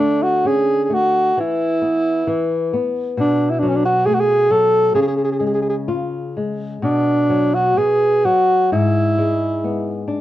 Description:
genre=fado-style ballad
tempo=63-68 BPM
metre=2/4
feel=rubato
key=unclear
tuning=A4 = 440 Hz
part: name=dark alto saxophone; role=melody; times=0.0-10.0 s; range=C#4 to A4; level=-16 LUFS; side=right 1 dB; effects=none
part: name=flamenco guitar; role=accompaniment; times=0.0-10.2 s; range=G#2 to E#4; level=-21 LUFS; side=left 3 dB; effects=none
room=light reverb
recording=worn, warbling old tape, cassette tape, warbly pitch drift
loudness=-15 LUFS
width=side -14 dB against mid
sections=0.0-10.2 A section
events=none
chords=0.0 D5; 1.4 E5; 3.2 B5; 5.0 C#; 6.8 B5; 8.7 G#m

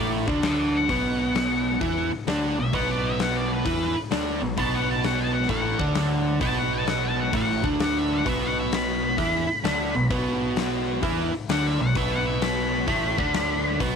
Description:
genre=blues rock power trio and southern rock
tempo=130 BPM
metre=4/4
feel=swing 66% on 8ths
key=B minor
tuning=A4 = 441 Hz
part: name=octave-fuzz lead guitar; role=melody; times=0.0-13.8 s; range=B4 to B5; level=-28 LUFS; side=left 3 dB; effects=distortion
part: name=overdriven electric guitar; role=riff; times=0.0-14.0 s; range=A2 to E4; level=-25 LUFS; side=right 1 dB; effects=none
part: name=growling picked electric bass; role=bass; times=0.0-14.0 s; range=A1 to E2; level=-31 LUFS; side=right 1 dB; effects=overdrive
part: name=huge arena drum kit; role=drums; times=0.3-13.9 s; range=hi-hat, kick drum, snare drum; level=-30 LUFS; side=left 4 dB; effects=none
room=light reverb, small room ambience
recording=1960s-style stereo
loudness=-22 LUFS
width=side -6 dB against mid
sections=0.0-14.0 A section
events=lead electric guitar solo 0.0-14.0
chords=0.0 Bm

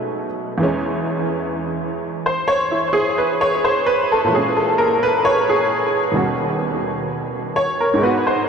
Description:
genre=solo jazz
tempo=65 BPM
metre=4/4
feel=swing 66% on 8ths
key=E major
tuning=A4 = 440 Hz
part: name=honky-tonk upright piano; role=solo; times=0.0-8.5 s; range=D#2 to C#5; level=-16 LUFS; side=equal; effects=tape echo
room=wet huge ambient reverb, RT60 4.8 s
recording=dreamy mix soaked in reverb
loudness=-16 LUFS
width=side -6 dB against mid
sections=0.6-8.5 A section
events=honky-tonk piano solo 0.6-8.5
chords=0.0 B13; 0.6 E6; 4.3 A#m7b5; 6.1 D#7alt

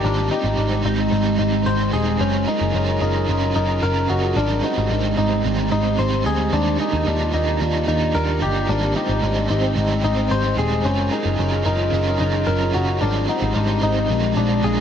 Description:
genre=dream pop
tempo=111 BPM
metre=4/4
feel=straight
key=unclear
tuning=A4 = 440 Hz
part: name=crunchy overdriven guitar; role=accompaniment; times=0.0-14.8 s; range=Ab2 to C5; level=-25 LUFS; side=right 4 dB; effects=tremolo, ensemble chorus, tape echo
part: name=warbly tape-like pad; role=sustained chords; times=0.0-14.8 s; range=Eb3 to D5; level=-24 LUFS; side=right 1 dB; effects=chorus, built-in reverb
part: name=direct-recorded clean electric guitar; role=arpeggios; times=0.0-14.8 s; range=Db4 to C5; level=-23 LUFS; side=left 2 dB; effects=wide subtle chorus, tape echo
part: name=vintage muted picked electric bass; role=bass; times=0.0-14.8 s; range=Eb1 to Eb2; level=-22 LUFS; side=equal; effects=none
room=moderate plate reverb, RT60 3.4 s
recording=echo-heavy mix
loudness=-18 LUFS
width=side -8 dB against mid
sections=0.0-14.8 A section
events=none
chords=0.0 Abmaj7; 2.2 Gbmaj7; 4.4 Abmaj7; 6.5 Ebmaj7; 8.7 Abmaj7; 10.9 Gbmaj7; 13.0 Abmaj7; 14.1 Bb7

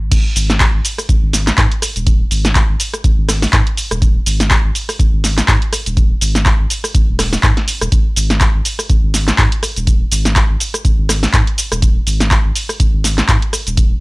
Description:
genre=acid house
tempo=123 BPM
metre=4/4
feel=swing 56% on 16ths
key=unclear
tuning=A4 = 440 Hz
part: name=saturated sub bass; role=bass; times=0.0-14.0 s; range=D#1 to G#2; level=-17 LUFS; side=equal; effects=sidechain pumping
part: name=electronic kick drum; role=drums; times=0.1-13.9 s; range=none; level=-14 LUFS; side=equal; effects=studio reverb
part: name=punchy analog drum machine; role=drums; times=0.1-13.9 s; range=crash cymbal, handclaps, hi-hat, rim click, shaker, snare drum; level=-16 LUFS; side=equal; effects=studio reverb
room=little or no reverb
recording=dry, gritty hardware recording, cassette tape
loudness=-12 LUFS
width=side -25 dB against mid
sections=0.1-14.0 A section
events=drop 0.1-14.0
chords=none

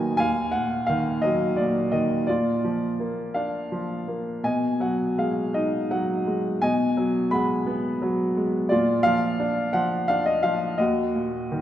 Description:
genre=classical, lyrical solo piano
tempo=85 BPM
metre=3/4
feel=rubato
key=Eb harmonic minor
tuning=A4 = 439 Hz
part: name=clear baby grand piano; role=solo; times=0.0-11.6 s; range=Eb2 to B5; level=-22 LUFS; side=equal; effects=none
room=wet concert hall reverb, RT60 2.3 s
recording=recorded in a church or concert hall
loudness=-22 LUFS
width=side -11 dB against mid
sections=0.0-11.6 A section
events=grand piano fill 0.0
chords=0.0 Ebmadd9; 2.3 Bb; 4.4 B6; 8.7 Bb; 10.8 Ebm

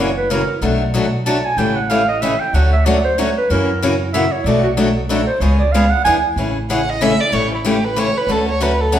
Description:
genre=acoustic string swing (jazz manouche)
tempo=188 BPM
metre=3/4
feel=swing 58% on 8ths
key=F# minor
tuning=A4 = 440 Hz
part: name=clear clarinet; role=second line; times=0.0-6.2 s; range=F#4 to A5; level=-19 LUFS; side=right 3 dB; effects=none
part: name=picked steel-string acoustic guitar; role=accompaniment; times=0.0-9.0 s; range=B2 to G#4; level=-17 LUFS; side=left 2 dB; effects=none
part: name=upright bass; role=bass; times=0.0-9.0 s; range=F#1 to F#2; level=-20 LUFS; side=equal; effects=none
part: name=dark violin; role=melody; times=6.7-9.0 s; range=E4 to F#5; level=-18 LUFS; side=right 2 dB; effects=none
room=wet large studio reverb, RT60 1.3 s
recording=band playing live in one room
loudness=-14 LUFS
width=side -10 dB against mid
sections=0.0-6.4 A section; 6.4-9.0 A section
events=clarinet solo 0.0-6.4; violin solo 6.4-9.0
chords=0.0 F#7; 0.6 Bm7; 1.6 A7; 2.5 Dmaj7; 3.5 F#7; 4.5 Bm7; 5.4 C#7; 6.0 E7; 6.4 Amaj7; 7.3 A7; 8.3 Dmaj7

